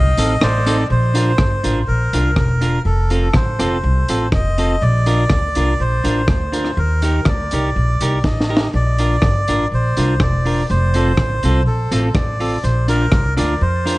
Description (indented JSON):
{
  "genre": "ska",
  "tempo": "123 BPM",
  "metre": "4/4",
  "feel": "straight",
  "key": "Bb major",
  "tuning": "A4 = 442 Hz",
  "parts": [
    { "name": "melodica", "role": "melody", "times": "0.0-14.0 s", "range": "A4 to Eb5", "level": "-22 LUFS", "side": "equal", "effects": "tape echo, plate reverb" },
    { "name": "upright bass", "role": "bass", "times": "0.0-14.0 s", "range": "E1 to F2", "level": "-17 LUFS", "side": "equal", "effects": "none" },
    { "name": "clean electric guitar", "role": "accompaniment", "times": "0.2-14.0 s", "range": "C4 to Bb4", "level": "-22 LUFS", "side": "right 1 dB", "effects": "plate reverb" },
    { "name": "crunchy breakbeat drum kit", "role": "drums", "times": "0.2-14.0 s", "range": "hi-hat, kick drum, rim click, snare drum", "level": "-19 LUFS", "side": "equal", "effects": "none" },
    { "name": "tambourine", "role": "percussion", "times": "0.2-0.8 s", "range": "none", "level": "-33 LUFS", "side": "left 4 dB", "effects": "none" }
  ],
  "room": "light reverb",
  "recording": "vinyl crackle, nothing above 10.6 kHz",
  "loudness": "-14 LUFS",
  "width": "side -20 dB against mid",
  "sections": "0.9-14.0 A section",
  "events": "drum fill 8.2-8.7",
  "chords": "0.0 F7 (rootless); 0.9 Bb; 2.9 F; 4.8 Bb; 6.8 Eb; 8.7 Bb; 10.7 F; 12.6 Bb"
}